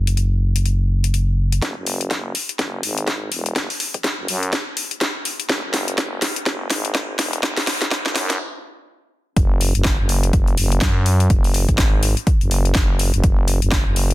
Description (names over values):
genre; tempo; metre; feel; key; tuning
bass house; 124 BPM; 4/4; swing 59% on 16ths; unclear; A4 = 440 Hz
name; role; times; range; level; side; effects
growling FM bass; bass; 0.0-14.1 s; E1 to F#2; -19 LUFS; equal; tube saturation, sidechain pumping, high-pass filter
house drum kit; drums; 0.1-14.1 s; hi-hat, snare drum; -22 LUFS; left 1 dB; overdrive
electronic kick drum; drums; 1.6-13.8 s; none; -18 LUFS; equal; overdrive, high-pass filter on kick
room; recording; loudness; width
little or no reverb; dense, heavily limited modern master, high-pass filter; -17 LUFS; side -16 dB against mid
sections
0.0-1.6 A section; 1.6-9.4 B section; 9.4-14.1 C section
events
build-up 1.6-9.4; drum fill 1.6-8.4; stop 8.4-9.4; drop 9.4-14.1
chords
none